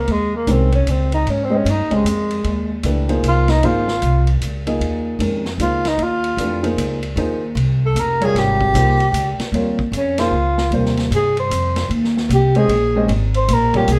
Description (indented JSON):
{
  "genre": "modal jazz",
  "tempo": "152 BPM",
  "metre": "3/4",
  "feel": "swing 64% on 8ths",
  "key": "unclear",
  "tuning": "A4 = 440 Hz",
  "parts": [
    { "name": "breathy tenor saxophone", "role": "melody", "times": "0.0-14.0 s", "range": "Ab3 to C5", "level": "-21 LUFS", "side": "equal", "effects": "none" },
    { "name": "upright bass", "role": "bass", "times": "0.0-14.0 s", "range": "F1 to Ab2", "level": "-21 LUFS", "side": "equal", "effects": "none" },
    { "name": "vintage drum kit", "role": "drums", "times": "0.1-14.0 s", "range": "hi-hat, kick drum, ride cymbal, snare drum", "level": "-32 LUFS", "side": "equal", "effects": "none" },
    { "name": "dark baby grand piano", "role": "accompaniment", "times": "0.5-13.9 s", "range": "C3 to Eb5", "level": "-24 LUFS", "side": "equal", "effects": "none" }
  ],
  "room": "moderate club reverb, RT60 0.7 s",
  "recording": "heard from further back in the room",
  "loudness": "-18 LUFS",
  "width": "mono",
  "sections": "0.0-14.0 A section",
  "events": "tenor saxophone solo 0.0-14.0",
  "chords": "0.0 Eb13sus4",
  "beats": "| 0.08 0.47 0.87 | 1.26 1.66 2.05 | 2.44 2.84 3.23 | 3.63 4.02 4.42 | 4.81 5.21 5.60 | 6.00 6.39 6.79 | 7.18 7.57 7.97 | 8.36 8.76 9.15 | 9.55 9.94 10.34 | 10.73 11.12 11.52 | 11.91 12.31 12.70 | 13.10 13.49 13.88"
}